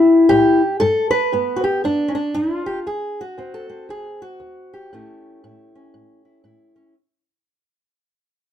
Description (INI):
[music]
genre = acoustic country blues, solo or duo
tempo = 117 BPM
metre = 4/4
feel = swing 61% on 8ths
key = unclear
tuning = A4 = 440 Hz
[part]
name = fingerpicked old ladder-braced acoustic guitar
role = solo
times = 0.0-7.0 s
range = D2 to B4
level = -16 LUFS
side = left 1 dB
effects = none
[sound]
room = little or no reverb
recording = dark, warm production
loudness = -16 LUFS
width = side -10 dB against mid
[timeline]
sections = 0.0-7.0 A section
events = fade-out 0.0-7.0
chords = 0.0 A5; 0.8 G7; 2.9 D7; 4.9 A7